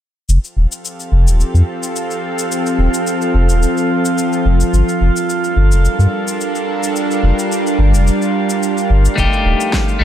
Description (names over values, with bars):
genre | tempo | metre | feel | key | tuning
organic downtempo | 108 BPM | 4/4 | straight | unclear | A4 = 440 Hz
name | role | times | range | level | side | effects
bowed-like drone | sustained chords | 1.0-10.0 s | F3 to Bb4 | -18 LUFS | right 1 dB | built-in reverb, sidechain pumping
warm sub bass | bass | 0.3-10.0 s | Eb1 to G2 | -11 LUFS | equal | sidechain pumping
electronic shaker and snare drum | drums | 0.3-10.0 s | none | -25 LUFS | left 3 dB | studio reverb
drifting glass-harmonics texture | texture | 0.9-10.0 s | F4 to F5 | -23 LUFS | right 3 dB | chorus, built-in reverb
electric guitar at the edge of break-up | accompaniment | 9.2-10.0 s | A3 to G4 | -16 LUFS | left 4 dB | sidechain pumping, ping-pong delay
electronic kick drum | drums | 9.2-9.9 s | none | -19 LUFS | equal | studio reverb
room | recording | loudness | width
light reverb, digital ambience | none | -13 LUFS | side -11 dB against mid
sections
0.3-10.0 A section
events
filter sweep on sub bass 0.3-10.0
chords
0.3 Fadd9; 4.7 Gm7; 9.2 F9